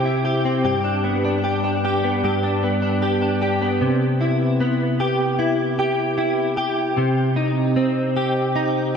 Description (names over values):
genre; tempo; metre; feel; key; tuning
dream pop; 76 BPM; 4/4; straight; C major; A4 = 440 Hz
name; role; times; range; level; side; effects
direct-recorded clean electric guitar; solo; 0.0-9.0 s; G2 to G4; -18 LUFS; equal; ensemble chorus, ping-pong delay
room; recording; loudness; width
wet lush hall reverb, RT60 2.9 s; dreamy mix soaked in reverb; -18 LUFS; side -6 dB against mid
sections
0.0-3.8 A section; 3.8-9.0 B section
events
none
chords
0.0 C; 0.7 G; 3.8 Cmaj7; 7.0 Cm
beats
| 0.65 1.44 2.23 3.02 | 3.81 4.60 5.39 6.18 | 6.97 7.76 8.55